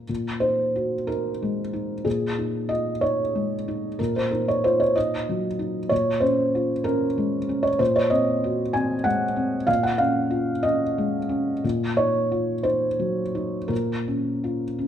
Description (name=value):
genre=neoclassical minimalist piano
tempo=55-64 BPM (dotted quarters)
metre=6/8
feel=rubato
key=unclear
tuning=A4 = 439 Hz
part: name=felt-muted upright piano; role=solo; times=0.0-14.9 s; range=Bb2 to Ab5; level=-22 LUFS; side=equal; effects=none
room=moderate large studio reverb, RT60 1.1 s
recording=band playing live in one room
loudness=-21 LUFS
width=side -9 dB against mid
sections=0.1-14.9 A section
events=none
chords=0.1 Ab7/Bb; 2.1 Dbadd9/Bb; 4.0 Ebmadd9/Bb; 5.9 Bbm7; 7.8 Ab7/Bb; 9.7 Dbadd9/Bb; 11.6 Ebmadd9/Bb; 13.7 Bbm